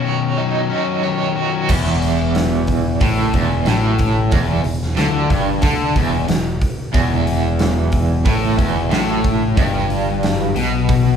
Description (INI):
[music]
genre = classic rock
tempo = 91 BPM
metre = 4/4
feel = straight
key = unclear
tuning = A4 = 440 Hz
[part]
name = crunchy overdriven guitar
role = riff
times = 0.0-11.2 s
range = E2 to D#4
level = -19 LUFS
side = left 6 dB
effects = none
[part]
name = crunchy overdriven guitar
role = riff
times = 0.0-11.2 s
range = E2 to C#5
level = -21 LUFS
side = right 6 dB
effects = tremolo
[part]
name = growling fingered electric bass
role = bass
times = 1.7-11.2 s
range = E1 to D2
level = -22 LUFS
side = right 1 dB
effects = overdrive
[part]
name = big rock drum kit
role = drums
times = 1.7-11.0 s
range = crash cymbal, hi-hat, kick drum, snare drum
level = -20 LUFS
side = right 1 dB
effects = none
[sound]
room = wet large studio reverb, RT60 0.8 s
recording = band playing live in one room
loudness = -15 LUFS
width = side -7 dB against mid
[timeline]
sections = 0.0-1.7 A section; 1.7-11.2 B section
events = break 0.0-1.7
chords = 0.0 Badd9; 1.7 E5